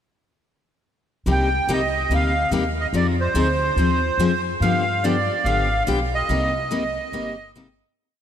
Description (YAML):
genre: acoustic string swing (jazz manouche)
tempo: 143 BPM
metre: 4/4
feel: swing 62% on 8ths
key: C minor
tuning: A4 = 443 Hz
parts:
  - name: accordion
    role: melody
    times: 1.3-7.5 s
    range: C5 to G5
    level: -22 LUFS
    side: right 2 dB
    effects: light tremolo tuning, analog delay
  - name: picked steel-string acoustic guitar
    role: accompaniment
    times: 1.3-7.7 s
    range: C3 to Ab4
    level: -23 LUFS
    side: left 3 dB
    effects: none
  - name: upright bass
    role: bass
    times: 1.3-7.8 s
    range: G1 to G2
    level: -24 LUFS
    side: equal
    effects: none
room: moderate lush hall reverb, RT60 2.9 s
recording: dreamy mix soaked in reverb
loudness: -19 LUFS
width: side -9 dB against mid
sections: 1.3-8.0 A section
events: fade-out 6.3-8.0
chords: 1.3 Cm11; 2.9 Fm7; 4.6 G7; 6.3 Cm7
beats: | 1.27 1.69 2.10 2.52 | 2.94 3.35 3.77 4.19 | 4.61 5.03 5.45 5.87 | 6.29 6.71 7.13 7.55